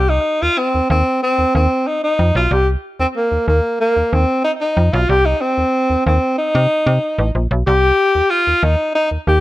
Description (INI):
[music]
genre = funk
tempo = 93 BPM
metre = 4/4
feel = straight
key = C minor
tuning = A4 = 438 Hz
[part]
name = breathy tenor saxophone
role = melody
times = 0.0-9.4 s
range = Bb3 to G4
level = -15 LUFS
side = equal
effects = slapback echo
[part]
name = slap-like FM bass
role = bass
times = 0.0-9.4 s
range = A1 to C3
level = -16 LUFS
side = equal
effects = none
[sound]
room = light reverb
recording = none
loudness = -14 LUFS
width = side -16 dB against mid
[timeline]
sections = 0.0-9.4 A section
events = none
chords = 0.0 Cm